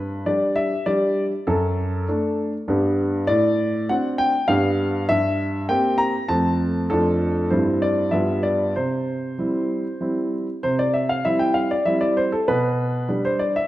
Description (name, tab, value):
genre	classical-period piano sonatina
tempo	99 BPM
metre	3/4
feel	straight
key	C major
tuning	A4 = 440 Hz
part	warm grand piano	solo	0.0-13.7 s	F2 to Bb5	-19 LUFS	equal	none
room	wet recital hall reverb, RT60 1.7 s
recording	none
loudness	-19 LUFS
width	side -15 dB against mid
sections	0.0-10.6 A section; 10.6-13.7 B section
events	none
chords	0.0 G; 1.5 D/F#; 2.7 G; 3.3 D7/A; 4.5 G; 5.1 C7/G; 6.3 F; 6.9 Dm/F; 7.5 C/G; 8.1 G7; 8.7 C; 12.5 G/B